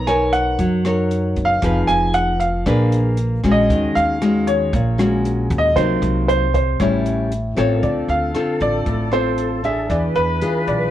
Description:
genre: bossa nova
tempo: 116 BPM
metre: 4/4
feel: straight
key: D minor from 7.8 s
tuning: A4 = 440 Hz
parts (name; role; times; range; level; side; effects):
- warm baby grand piano; melody; 0.0-10.9 s; B4 to Ab5; -20 LUFS; equal; none
- nylon-string guitar; accompaniment; 0.0-10.9 s; A2 to C#5; -20 LUFS; left 1 dB; none
- upright bass; bass; 0.0-10.9 s; F1 to F#2; -22 LUFS; right 1 dB; none
- compact cocktail drum kit; drums; 0.1-10.8 s; hi-hat, kick drum, rim click; -28 LUFS; equal; none
- large flute ensemble; second line; 7.8-10.9 s; A4 to B4; -27 LUFS; equal; none
room: light reverb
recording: worn, warbling old tape, cassette tape, warbly pitch drift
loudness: -16 LUFS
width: side -12 dB against mid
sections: 0.0-7.8 A section; 7.8-10.9 B section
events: none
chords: 0.0 Bmaj9; 1.6 Fm7b5; 2.7 Bb7b9; 3.7 Ebm11; 5.8 Cm7b5; 6.8 A7; 7.8 Dm7; 9.9 E7b9

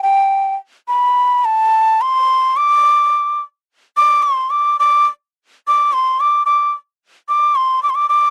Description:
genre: indian classical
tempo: 108 BPM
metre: 5/4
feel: straight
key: D raga bhimpalasi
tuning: A4 = 440 Hz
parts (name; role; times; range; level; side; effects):
- breathy bansuri; solo; 0.0-8.3 s; G5 to D6; -14 LUFS; equal; none
room: light reverb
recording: dry, close 1970s-style studio recording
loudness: -15 LUFS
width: mono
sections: 0.0-8.1 A section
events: speeding up 0.0-8.3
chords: none

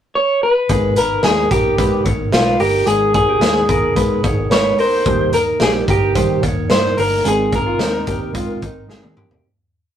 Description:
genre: jangly indie pop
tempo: 110 BPM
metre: 4/4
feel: straight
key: unclear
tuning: A4 = 440 Hz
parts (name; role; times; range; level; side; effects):
- electric guitar through a small old amp; melody; 0.2-9.1 s; F4 to Db5; -17 LUFS; equal; none
- mellow electric guitar; accompaniment; 0.7-9.4 s; Eb3 to Bb4; -22 LUFS; equal; none
- electric guitar through a small old amp; arpeggios; 0.7-9.4 s; Eb4 to Db5; -22 LUFS; left 1 dB; none
- vintage muted fingered electric bass; bass; 0.7-9.1 s; G1 to G2; -25 LUFS; equal; none
- raw garage drum kit; drums; 0.7-9.4 s; hi-hat, kick drum, snare drum, toms; -20 LUFS; equal; none
room: moderate booth ambience, RT60 0.2 s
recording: rough rehearsal-room recording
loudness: -13 LUFS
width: side -9 dB against mid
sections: 0.0-0.7 pickup bar; 0.7-9.4 verse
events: fade-out 7.3-9.4; drum fill 8.9-9.4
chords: 0.0 N.C.; 0.7 Abmadd9; 5.1 Eb; 7.3 Abadd9

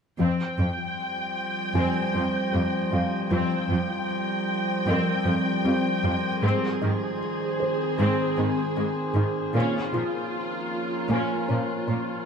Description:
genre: cinematic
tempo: 77 BPM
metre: 4/4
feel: straight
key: F minor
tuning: A4 = 440 Hz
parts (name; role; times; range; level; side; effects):
- clear symphonic viola section; accompaniment; 0.2-12.3 s; Eb3 to G5; -29 LUFS; equal; none
- metallic inharmonic drone; sustained chords; 0.9-12.3 s; Eb3 to C5; -28 LUFS; equal; chorus, built-in reverb
- tight sequenced synth; arpeggios; 0.2-12.1 s; F3 to F4; -31 LUFS; left 2 dB; chorus, phaser, ping-pong delay
- rich symphonic cello section; bass; 0.2-12.0 s; F2 to Bb2; -27 LUFS; right 1 dB; none
- felt-muted upright piano; texture; 1.8-12.3 s; Bb4 to Ab5; -37 LUFS; left 1 dB; ping-pong delay
room: moderate scoring stage reverb, RT60 2.0 s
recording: none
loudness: -23 LUFS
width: side -6 dB against mid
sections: 0.2-12.3 A section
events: none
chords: 0.2 Fsus2; 6.4 Ab; 9.5 Bbm

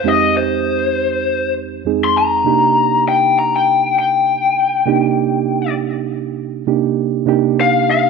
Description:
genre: blues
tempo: 100 BPM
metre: 4/4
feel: swing 55% on 16ths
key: C minor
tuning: A4 = 440 Hz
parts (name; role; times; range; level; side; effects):
- lead guitar through a small cranked amp; melody; 0.0-8.1 s; C5 to C6; -15 LUFS; left 6 dB; overdrive
- reed electric piano; accompaniment; 0.0-8.1 s; F2 to Ab4; -17 LUFS; right 12 dB; none
room: moderate echo chamber reverb, RT60 2.1 s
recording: 1960s-style stereo with parts hard left and right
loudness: -13 LUFS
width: side -4 dB against mid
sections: 0.0-7.3 A section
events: none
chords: 0.1 Fm9; 2.5 Cm9

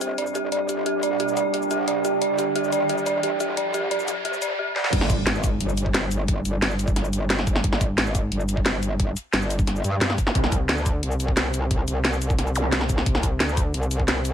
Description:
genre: dark technical drum and bass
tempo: 177 BPM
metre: 4/4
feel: straight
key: G phrygian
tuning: A4 = 441 Hz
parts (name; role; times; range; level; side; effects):
- metallic inharmonic drone; sustained chords; 0.0-4.5 s; G3 to G4; -27 LUFS; right 4 dB; chorus, built-in reverb, sidechain pumping
- dark detuned synth bell; arpeggios; 0.0-4.9 s; G4 to D5; -25 LUFS; equal; chorus, sidechain pumping, low-pass filter, tape echo
- metallic wobble bass; bass; 0.0-14.3 s; F1 to G2; -26 LUFS; equal; chorus, tube saturation, high-pass filter
- drum and bass drum kit; drums; 0.0-14.3 s; crash cymbal, hi-hat, shaker, snare drum; -25 LUFS; equal; high-pass filter on hats, high-pass filter on perc, high-pass filter on snare, high-pass filter on cymbals, high-pass filter on room
- riser, impact and zap; sound effects; 1.2-6.3, 10.3-10.4, 12.6 s; none; -33 LUFS; right 1 dB; none
- electronic kick drum; drums; 4.9-14.1 s; none; -24 LUFS; equal; none
room: light reverb, digital ambience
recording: high-pass filter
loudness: -21 LUFS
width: side -8 dB against mid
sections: 0.0-4.9 A section; 4.9-14.3 B section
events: build-up 0.0-4.9; filter sweep on synth drone 0.0-4.9; filter sweep on synth bell 0.0-4.9; filter sweep 0.0-4.9; riser 1.2-4.6; drum fill 4.8; drop 4.9-14.3; impact 4.9-6.3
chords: 0.0 Gm; 4.9 N.C.; 10.4 Csus2

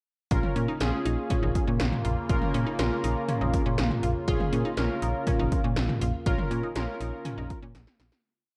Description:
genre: synth-pop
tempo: 121 BPM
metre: 4/4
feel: straight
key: unclear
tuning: A4 = 440 Hz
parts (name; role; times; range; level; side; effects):
- analog synth brass; accompaniment; 0.3-7.6 s; Db4 to Bb4; -34 LUFS; equal; chorus
- sweeping resonant pad; sustained chords; 0.3-8.2 s; Db3 to F4; -36 LUFS; equal; chorus
- resonant blip pluck; arpeggios; 0.3-8.2 s; Db4 to F4; -39 LUFS; equal; phaser, analog delay
- slap-like FM bass; bass; 0.3-8.1 s; Bb1 to Bb2; -32 LUFS; equal; none
- 80s electronic pad drums; drums; 0.3-8.2 s; hi-hat, kick drum, snare drum, toms; -31 LUFS; equal; gated reverb on snare and toms
room: light reverb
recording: dark, warm production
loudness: -27 LUFS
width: mono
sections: 0.3-8.2 pre-chorus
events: fade-out 6.3-8.2; drum fill 7.7-8.2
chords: 0.3 Bbm

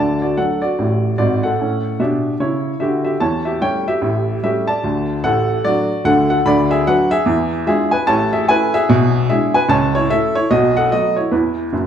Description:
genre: jazz, stride piano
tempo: 148 BPM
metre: 4/4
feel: swing 61% on 8ths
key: D major, A major from 6.5 s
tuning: A4 = 439 Hz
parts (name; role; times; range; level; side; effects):
- warm upright piano; solo; 0.0-11.9 s; F#1 to B5; -14 LUFS; equal; none
room: wet large studio reverb, RT60 1.2 s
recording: band playing live in one room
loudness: -14 LUFS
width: side -8 dB against mid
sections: 0.0-11.9 A section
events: none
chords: 0.0 D; 1.6 A9; 3.2 A7/E; 4.8 D; 6.5 Bm/D; 7.3 E7b9; 8.1 A; 8.9 E7/B; 9.7 A/C#; 10.5 B5; 11.3 E5

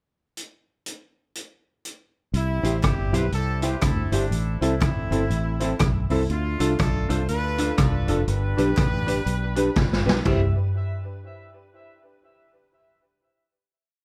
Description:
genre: ska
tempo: 121 BPM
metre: 4/4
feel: swing 60% on 8ths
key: C major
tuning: A4 = 441 Hz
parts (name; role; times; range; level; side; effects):
- street-band drum kit; drums; 0.4-10.4 s; crash cymbal, hi-hat, kick drum, rim click, snare drum, toms; -27 LUFS; equal; none
- clear horn section; melody; 2.3-10.5 s; G3 to E5; -33 LUFS; equal; tape echo
- fingered electric bass; bass; 2.3-10.5 s; F1 to D2; -28 LUFS; equal; none
- hollow-body jazz guitar; accompaniment; 2.6-10.4 s; C4 to C5; -29 LUFS; equal; none
- warm upright piano; stabs; 2.6-10.5 s; C4 to C5; -33 LUFS; equal; tape echo
- group handclap; percussion; 2.8-10.5 s; none; -44 LUFS; equal; none
room: light reverb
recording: none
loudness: -23 LUFS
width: mono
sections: 0.4-2.3 pickup bar; 2.3-10.3 head; 10.3-12.2 final chord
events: drum fill 9.8-10.3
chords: 0.4 N.C.; 2.3 C; 4.3 Am; 6.3 Dm; 8.3 G; 10.3 C

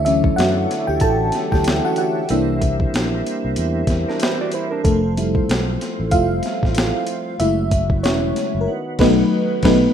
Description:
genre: R&B, neo-soul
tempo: 94 BPM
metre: 4/4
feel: swing 57% on 16ths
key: unclear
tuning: A4 = 440 Hz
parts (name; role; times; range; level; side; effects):
- FM electric piano with soft pad layer; accompaniment; 0.0-9.9 s; E3 to A5; -19 LUFS; equal; chorus
- tonewheel organ; sustained chords; 0.0-9.9 s; C#3 to F#4; -27 LUFS; right 2 dB; slow rotary speaker, chorus vibrato
- fretless electric bass; bass; 0.0-9.9 s; E1 to F#2; -22 LUFS; equal; none
- boom bap sampler-style drum kit; drums; 0.1-9.8 s; crash cymbal, hi-hat, kick drum, snare drum; -21 LUFS; equal; none
- hollow-body jazz guitar; second line; 4.1-5.0 s; D4 to D5; -26 LUFS; right 6 dB; none
room: light reverb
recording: rough home demo mix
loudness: -16 LUFS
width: side -8 dB against mid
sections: 0.0-9.9 A section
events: FM electric piano solo 0.0-9.9; silent gap 8.7-9.9; band accent 8.7-9.9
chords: 0.0 Dmaj7; 2.3 C7; 4.8 Fmaj7; 7.4 F#m7; 8.7 B7

